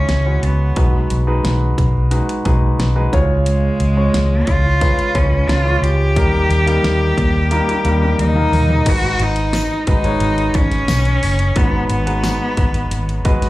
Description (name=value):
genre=piano-driven pop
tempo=89 BPM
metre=4/4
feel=straight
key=G# minor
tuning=A4 = 440 Hz
part: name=rich cello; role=melody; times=0.0-13.2 s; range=G#3 to G4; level=-20 LUFS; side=equal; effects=none
part: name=warm concert grand piano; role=accompaniment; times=0.0-13.5 s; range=G#2 to E5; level=-21 LUFS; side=equal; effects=slapback echo
part: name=vintage muted fingered electric bass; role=bass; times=0.0-13.5 s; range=F#1 to D#2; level=-17 LUFS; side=equal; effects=none
part: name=pop drum kit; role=drums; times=0.1-13.5 s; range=crash cymbal, hi-hat, kick drum, snare drum, toms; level=-19 LUFS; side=equal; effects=none
part: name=tambourine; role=percussion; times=9.5-12.4 s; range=none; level=-31 LUFS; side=left 1 dB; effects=none
room=light reverb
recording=live gig heard through the venue's PA, club reverb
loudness=-13 LUFS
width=side -17 dB against mid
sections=0.0-8.9 A section; 8.9-13.5 B section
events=drum fill 7.5-8.9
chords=0.0 C#m; 0.8 G#m7/B; 3.1 C#; 6.2 D#; 8.9 G#m7